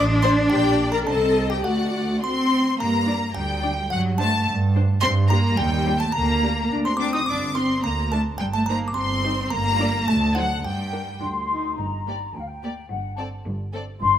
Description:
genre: cinematic, playful, whimsical film cue.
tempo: 107 BPM.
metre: 2/4.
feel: straight.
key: G minor.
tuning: A4 = 440 Hz.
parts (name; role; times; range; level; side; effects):
music box; melody; 0.0-11.2 s; F#5 to Eb6; -31 LUFS; right 3 dB; none.
rich studio violin section; second line; 0.0-13.8 s; G4 to Eb6; -29 LUFS; left 5 dB; none.
warm studio viola section; accompaniment; 0.0-13.8 s; Bb3 to D5; -27 LUFS; left 2 dB; none.
rich studio cello section; bass; 0.0-14.2 s; D2 to Eb4; -24 LUFS; right 1 dB; none.
rich studio double bass section; bass; 0.0-14.2 s; G1 to G2; -25 LUFS; right 2 dB; none.
rich symphonic violin section; melody; 0.2-13.8 s; D5 to Eb6; -28 LUFS; left 2 dB; none.
mellow large flute ensemble; second line; 11.2-14.2 s; F5 to C6; -25 LUFS; left 6 dB; none.
room: light reverb.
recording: close, detailed microphones.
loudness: -20 LUFS.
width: side -10 dB against mid.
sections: 0.0-2.8 A section; 2.8-11.8 B section; 11.8-14.2 C section.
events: none.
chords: 0.0 D5/A; 0.5 Gm/Bb; 1.1 Cm; 1.6 D; 2.8 Gm; 3.9 D7/G; 5.0 Gm; 5.6 Cm/Eb; 6.1 Gm/D; 6.7 Cmadd9/D; 7.3 Gm; 8.4 Cm/G; 9.5 Gm; 10.1 D7b9; 10.6 G5; 11.8 Gm; 12.9 N.C..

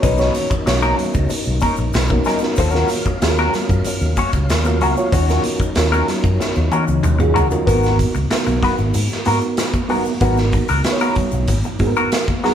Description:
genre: funk.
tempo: 94 BPM.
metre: 4/4.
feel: straight.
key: G# dorian.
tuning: A4 = 440 Hz.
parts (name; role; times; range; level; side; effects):
semi-hollow electric guitar; accompaniment; 0.0-12.5 s; B3 to C#5; -22 LUFS; left 3 dB; wah, vibrato effect.
mellow tonewheel organ; sustained chords; 0.0-7.6 s; F#3 to E#5; -28 LUFS; left 3 dB; slow rotary speaker, chorus vibrato.
mellow reed electric piano; stabs; 0.0-12.5 s; A#3 to C#5; -22 LUFS; right 3 dB; spring reverb.
fingered electric bass with an envelope filter; bass; 0.0-11.9 s; G#1 to G#2; -19 LUFS; equal; none.
raw garage drum kit; drums; 0.0-12.5 s; hi-hat, kick drum, snare drum, toms; -20 LUFS; equal; none.
tube shaker; percussion; 0.0-12.4 s; none; -38 LUFS; left 4 dB; none.
congas; percussion; 0.3-12.5 s; none; -31 LUFS; equal; none.
room: moderate large studio reverb, RT60 1.0 s.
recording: band playing live in one room.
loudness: -15 LUFS.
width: side -9 dB against mid.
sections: 0.0-7.7 A section; 7.7-12.5 B section.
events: drum fill 6.4-7.7.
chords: 0.0 Bmaj9; 2.6 D#m7; 7.7 G#m9.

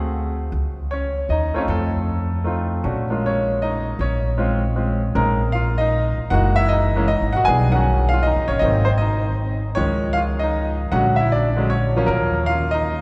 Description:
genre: jazz.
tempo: 156 BPM.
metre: 3/4.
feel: swing 66% on 8ths.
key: Bb minor.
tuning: A4 = 441 Hz.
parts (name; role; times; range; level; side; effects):
clear concert grand piano; melody; 0.0-13.0 s; D3 to Ab5; -23 LUFS; equal; none.
upright bass; bass; 0.0-13.0 s; Gb1 to F2; -24 LUFS; equal; none.
room: wet church reverb, RT60 3.6 s.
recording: recorded in a church or concert hall.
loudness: -20 LUFS.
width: mono.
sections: 0.0-5.2 A section; 5.2-13.0 B section.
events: none.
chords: 0.0 D7#11; 0.5 N.C.; 1.7 F7; 2.8 Bbm9; 6.3 Gb13; 7.5 Bmaj7; 8.6 Ab; 9.8 Dbadd9; 10.9 Bb7alt; 12.1 Ebm9.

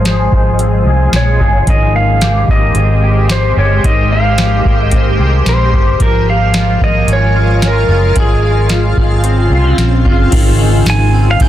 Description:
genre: dream pop.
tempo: 111 BPM.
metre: 4/4.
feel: straight.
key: Ab major.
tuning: A4 = 440 Hz.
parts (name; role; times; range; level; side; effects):
pedal steel guitar; melody; 0.0-11.5 s; Ab4 to Ab5; -17 LUFS; equal; low-pass filter, digital delay.
shimmering ambient pad; sustained chords; 0.0-11.5 s; Db3 to Db5; -18 LUFS; equal; chorus, built-in reverb, low-pass filter.
clean electric guitar; arpeggios; 0.0-11.5 s; Eb3 to Ab4; -19 LUFS; left 1 dB; ensemble chorus, low-pass filter, digital delay.
vintage muted fingered electric bass; bass; 0.0-11.5 s; Gb1 to C2; -12 LUFS; equal; none.
booming analog drum machine; drums; 0.1-11.5 s; crash cymbal, hi-hat, kick drum, ride cymbal, snare drum, tambourine; -14 LUFS; equal; none.
room: light reverb.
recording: dense, heavily limited modern master.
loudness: -9 LUFS.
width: side -12 dB against mid.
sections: 0.0-10.3 A section; 10.3-11.5 B section.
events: none.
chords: 0.0 Dbmaj7/Ab; 1.7 Abmaj9; 6.0 Gbmaj7/Ab; 8.2 Dbmaj7/Ab; 10.3 Ab.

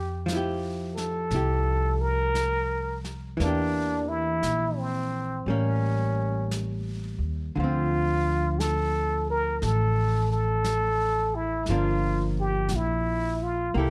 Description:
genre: jazz ballad.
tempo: 58 BPM.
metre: 4/4.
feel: swing 66% on 8ths.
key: D minor from 7.6 s.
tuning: A4 = 439 Hz.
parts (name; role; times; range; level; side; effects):
trumpet with plunger mute; melody; 0.0-13.9 s; C4 to Bb4; -30 LUFS; equal; plate reverb.
upright bass; bass; 0.0-13.9 s; G1 to F2; -30 LUFS; equal; none.
archtop guitar, miked and amplified; accompaniment; 0.3-13.9 s; D3 to A4; -34 LUFS; equal; none.
jazz brush drum kit; drums; 0.3-13.9 s; brushed snare drum, hi-hat, snare drum; -42 LUFS; equal; none.
room: light reverb.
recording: dark, warm production.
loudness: -27 LUFS.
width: mono.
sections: 0.0-7.6 A section; 7.6-13.9 B section.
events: none.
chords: 0.0 Fmaj9; 3.4 Em7b5; 5.5 A7b9; 7.6 Dm7; 11.7 Gm7.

